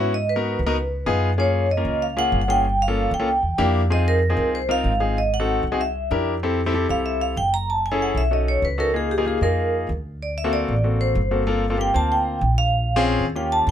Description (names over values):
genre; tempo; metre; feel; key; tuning
Afro-Cuban jazz; 190 BPM; 4/4; straight; unclear; A4 = 440 Hz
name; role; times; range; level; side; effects
vibraphone with medium hard mallets; melody; 0.0-13.7 s; G4 to Bb5; -23 LUFS; right 1 dB; none
clear grand piano; accompaniment; 0.0-13.7 s; Bb3 to C5; -23 LUFS; left 3 dB; none
upright bass; bass; 0.0-13.7 s; Gb1 to G#2; -24 LUFS; equal; none
room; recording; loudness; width
little or no reverb; close, detailed microphones; -19 LUFS; side -10 dB against mid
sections
0.0-6.4 A section; 6.4-13.7 B section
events
vibraphone solo 6.4-13.7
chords
0.1 Abm7; 0.8 Db9; 1.4 Gbmaj7; 2.6 Gm7b5; 3.3 C7; 3.9 Fm7; 5.2 Ab7b9; 5.8 C7; 6.4 Fmaj7; 7.7 Gbm7; 8.3 B9; 8.9 Db69; 10.2 D7b13; 11.5 Gm11; 12.7 Bbm7